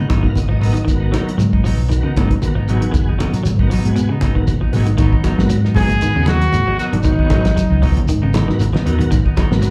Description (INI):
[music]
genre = afrobeat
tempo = 116 BPM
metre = 4/4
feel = swing 54% on 16ths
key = G# dorian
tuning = A4 = 440 Hz
[part]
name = tonewheel organ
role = accompaniment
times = 0.0-9.7 s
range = B3 to E#5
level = -29 LUFS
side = equal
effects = chorus vibrato, fast rotary speaker, slapback echo
[part]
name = clean electric guitar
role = arpeggios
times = 0.0-9.7 s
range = B2 to F#3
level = -25 LUFS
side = equal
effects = slapback echo
[part]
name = semi-hollow electric guitar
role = stabs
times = 0.0-9.5 s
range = F#3 to D#4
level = -29 LUFS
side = equal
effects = lush chorus, slapback echo
[part]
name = hollow-body short-scale fingered electric bass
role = bass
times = 0.1-9.7 s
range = F#1 to G#2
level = -20 LUFS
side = equal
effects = none
[part]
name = cloth-damped thuddy drum kit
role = drums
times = 0.1-9.7 s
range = hi-hat, kick drum, snare drum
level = -22 LUFS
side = equal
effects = none
[part]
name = congas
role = percussion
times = 0.1-9.7 s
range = none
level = -24 LUFS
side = equal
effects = slapback echo
[part]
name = shekere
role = percussion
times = 0.1-9.7 s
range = none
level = -27 LUFS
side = equal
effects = none
[part]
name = warm trumpet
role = melody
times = 5.8-7.9 s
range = D#4 to G#4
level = -22 LUFS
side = equal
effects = slapback echo
[sound]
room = light reverb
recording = live gig heard through the venue's PA, club reverb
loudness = -16 LUFS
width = mono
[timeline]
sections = 0.0-5.0 A section; 5.0-9.7 B section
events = tonewheel organ fill 0.0-0.9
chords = 0.0 G#m7